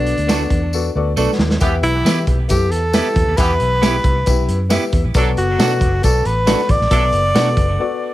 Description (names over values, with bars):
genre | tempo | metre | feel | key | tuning
uptempo 1960s-style soul | 136 BPM | 4/4 | straight | E minor | A4 = 441 Hz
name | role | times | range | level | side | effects
breathy tenor saxophone | melody | 0.0-8.1 s | D4 to D5 | -19 LUFS | equal | plate reverb
warm upright piano | accompaniment | 0.0-8.1 s | B2 to E5 | -23 LUFS | left 6 dB | plate reverb
vintage muted fingered electric bass | bass | 0.0-7.8 s | F#1 to E3 | -19 LUFS | equal | none
crunchy breakbeat drum kit | drums | 0.1-7.7 s | hi-hat, kick drum, snare drum | -18 LUFS | equal | none
clean electric guitar | stabs | 0.3-7.5 s | A3 to G4 | -24 LUFS | right 7 dB | plate reverb, tape echo
tambourine | percussion | 0.3-7.5 s | none | -30 LUFS | left 4 dB | none
clear horn section | second line | 1.6-7.1 s | E3 to A4 | -26 LUFS | right 3 dB | plate reverb, tape echo
room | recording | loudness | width
light reverb | none | -14 LUFS | side -15 dB against mid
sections
0.0-1.6 A section; 1.6-8.1 B section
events
drum fill 0.7-1.6; break 7.8-8.1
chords
0.0 Bm7; 1.6 Em; 5.1 Bm7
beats
0.28 0.73 1.17 | 1.61 2.06 2.50 2.94 | 3.38 3.82 4.26 4.71 | 5.15 5.59 6.03 6.47 | 6.91 7.35 7.79